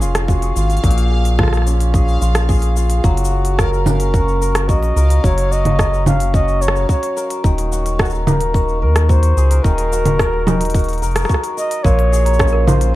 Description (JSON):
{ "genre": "folktronica", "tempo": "109 BPM", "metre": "4/4", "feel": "straight", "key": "Bb minor", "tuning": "A4 = 440 Hz", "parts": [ { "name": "hammered dulcimer", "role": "arpeggios", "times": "0.0-13.0 s", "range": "Bb2 to Bb4", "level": "-23 LUFS", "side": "left 1 dB", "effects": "digital delay" }, { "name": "round analog bass", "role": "bass", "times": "0.0-13.0 s", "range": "Eb1 to Eb2", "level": "-16 LUFS", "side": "equal", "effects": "none" }, { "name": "organic electronic drum kit", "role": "drums", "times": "0.0-12.9 s", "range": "cabasa, congas, hi-hat, rim click", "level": "-20 LUFS", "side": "right 1 dB", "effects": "none" }, { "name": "backwards swelling texture", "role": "texture", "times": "0.0-11.9 s", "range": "F5", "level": "-33 LUFS", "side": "equal", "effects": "built-in reverb" }, { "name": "electronic kick drum", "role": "drums", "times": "0.3-12.5 s", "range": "none", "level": "-16 LUFS", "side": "equal", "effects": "none" }, { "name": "breathy flugelhorn", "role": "melody", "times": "3.0-13.0 s", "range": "Gb4 to F5", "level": "-21 LUFS", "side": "equal", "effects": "digital delay" }, { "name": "worn celesta", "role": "second line", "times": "11.8-13.0 s", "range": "Bb4 to Bb5", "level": "-24 LUFS", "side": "right 6 dB", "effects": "none" } ], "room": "little or no reverb", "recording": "vinyl crackle", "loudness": "-13 LUFS", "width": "side -16 dB against mid", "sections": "0.0-11.8 A section; 11.8-13.0 B section", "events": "none", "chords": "0.0 Bbm7; 3.0 Gb6; 7.4 Ebm; 11.8 Bbm7", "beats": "0.29 | 0.84 1.39 1.94 2.49 | 3.04 3.59 4.14 4.69 | 5.24 5.79 6.34 6.89 | 7.44 7.99 8.54 9.09 | 9.64 10.19 10.74 11.29 | 11.85 12.40 12.95" }